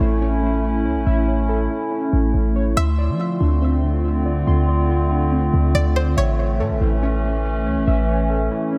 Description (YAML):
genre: hip hop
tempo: 141 BPM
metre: 4/4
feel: half-time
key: D minor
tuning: A4 = 440 Hz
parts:
  - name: string-like resonator pluck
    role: melody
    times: 0.0-7.8 s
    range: C5 to E5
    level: -30 LUFS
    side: equal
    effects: chorus, phaser, tape echo
  - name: warbly tape-like pad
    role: sustained chords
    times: 0.0-8.8 s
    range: D3 to F4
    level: -25 LUFS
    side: equal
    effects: chorus, built-in reverb
  - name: warbly lo-fi synth keys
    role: arpeggios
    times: 0.0-8.8 s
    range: D3 to C6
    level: -27 LUFS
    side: equal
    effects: chorus, tape echo
  - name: clean 808-style bass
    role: bass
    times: 0.0-8.5 s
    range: A1 to F3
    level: -22 LUFS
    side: equal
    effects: none
room: light reverb, digital ambience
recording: none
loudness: -19 LUFS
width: mono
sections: 0.0-8.8 A section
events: none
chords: 0.0 A; 2.8 Dm7; 6.2 A